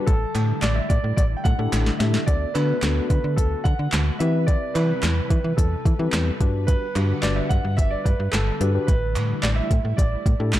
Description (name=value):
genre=dance-pop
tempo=109 BPM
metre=4/4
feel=straight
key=unclear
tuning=A4 = 438 Hz
part: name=tine electric piano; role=accompaniment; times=0.0-10.6 s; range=B3 to B4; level=-28 LUFS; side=left 5 dB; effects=sidechain pumping
part: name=string machine, cellos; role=sustained chords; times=0.0-10.6 s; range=C3 to F#5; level=-32 LUFS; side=equal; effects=ensemble chorus, sidechain pumping
part: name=dark concert grand piano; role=melody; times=0.1-10.6 s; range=A4 to G5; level=-29 LUFS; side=right 2 dB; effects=dub echo
part: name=slap-like FM bass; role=bass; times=0.1-10.6 s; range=G1 to E3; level=-23 LUFS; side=equal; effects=sidechain pumping
part: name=smooth R&B drum kit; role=drums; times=0.1-10.6 s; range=handclaps, hi-hat, kick drum, snare drum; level=-22 LUFS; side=equal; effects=overdrive
part: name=group handclap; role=percussion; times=0.4-10.6 s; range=none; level=-34 LUFS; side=right 3 dB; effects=none
room=light reverb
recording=dark, warm production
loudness=-19 LUFS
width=side -13 dB against mid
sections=0.0-10.6 A section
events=drum fill 1.7-2.3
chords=0.1 A7sus4; 2.3 D6; 4.2 Cmaj7; 6.4 Gmaj7; 8.9 A7sus4